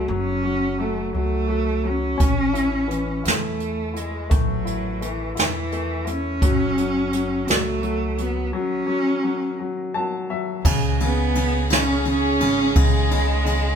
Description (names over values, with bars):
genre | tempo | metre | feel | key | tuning
six-eight pop ballad | 57 BPM (dotted quarters) | 6/8 | straight | C# minor | A4 = 441 Hz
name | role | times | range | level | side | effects
warm cello | melody | 0.0-13.8 s | E3 to C#4 | -24 LUFS | right 1 dB | none
clear upright piano | accompaniment | 0.0-13.8 s | C#3 to A5 | -26 LUFS | left 4 dB | none
upright bass | bass | 0.0-13.8 s | F#1 to E2 | -26 LUFS | right 1 dB | none
jazz brush drum kit | drums | 2.2-13.6 s | crash cymbal, hi-hat, kick drum, ride cymbal, snare drum | -22 LUFS | right 1 dB | none
warm studio violin section | second line | 10.6-13.8 s | G#4 | -27 LUFS | left 1 dB | none
room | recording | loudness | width
light reverb | band playing live in one room | -19 LUFS | side -7 dB against mid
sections
0.0-10.7 A section; 10.7-13.8 B section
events
break 8.5-10.7; upright piano fill 9.6-10.7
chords
0.0 F#m; 2.2 A; 6.4 F#m; 10.7 C#5